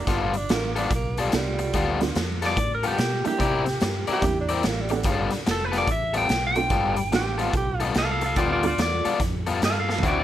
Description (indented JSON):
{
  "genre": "electric blues shuffle",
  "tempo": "145 BPM",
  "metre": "4/4",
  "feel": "swing 64% on 8ths",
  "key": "G mixolydian",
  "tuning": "A4 = 440 Hz",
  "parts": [
    { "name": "breathy tenor saxophone", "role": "second line", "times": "0.0-7.9 s", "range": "D3 to G4", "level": "-29 LUFS", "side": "right 3 dB", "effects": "none" },
    { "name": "honky-tonk upright piano", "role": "accompaniment", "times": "0.0-9.2 s", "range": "G3 to G4", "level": "-30 LUFS", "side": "right 6 dB", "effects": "none" },
    { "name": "vintage muted fingered electric bass", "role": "bass", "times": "0.0-10.2 s", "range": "F1 to C3", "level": "-29 LUFS", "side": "equal", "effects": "none" },
    { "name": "crunchy overdriven guitar", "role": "riff", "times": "0.1-10.2 s", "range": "D3 to D5", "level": "-27 LUFS", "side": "left 5 dB", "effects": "none" },
    { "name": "raw garage drum kit", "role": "drums", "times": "0.1-10.2 s", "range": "hi-hat, kick drum, snare drum, toms", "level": "-27 LUFS", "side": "equal", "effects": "none" },
    { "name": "electric guitar through a small old amp", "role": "melody", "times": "2.5-10.2 s", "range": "F4 to G5", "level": "-26 LUFS", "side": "equal", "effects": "none" }
  ],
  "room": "light reverb",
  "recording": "none",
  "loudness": "-21 LUFS",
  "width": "side -12 dB against mid",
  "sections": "0.0-10.2 A section",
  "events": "drum fill 9.8",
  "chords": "0.1 G9; 3.4 C9; 5.1 G9",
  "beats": "| 0.08 0.49 0.91 1.32 | 1.74 2.15 2.57 2.98 | 3.40 3.81 4.23 4.64 | 5.06 5.47 5.89 6.30 | 6.72 7.13 7.55 7.96 | 8.38 8.79 9.21 9.62 | 10.04"
}